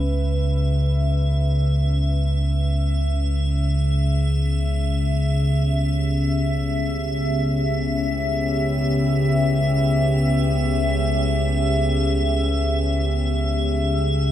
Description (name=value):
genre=dark ambient drone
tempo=free time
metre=none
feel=none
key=unclear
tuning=A4 = 444 Hz
part: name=dark analog pad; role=sustained chords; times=0.0-14.3 s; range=B3 to F#5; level=-29 LUFS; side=equal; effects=chorus
part: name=deep rumbling drone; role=drone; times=0.0-14.3 s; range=C#2 to C#3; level=-20 LUFS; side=equal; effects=built-in reverb
part: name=icy glass pad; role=texture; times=0.0-14.3 s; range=E5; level=-28 LUFS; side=right 1 dB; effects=chorus, built-in reverb
room=moderate huge ambient reverb, RT60 7.6 s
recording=none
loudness=-19 LUFS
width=side -12 dB against mid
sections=0.0-14.3 A section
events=fade-in on ambient pad 0.0-14.3; fade-out on analog synth pad 0.0-14.3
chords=0.0 C#m7; 4.2 Em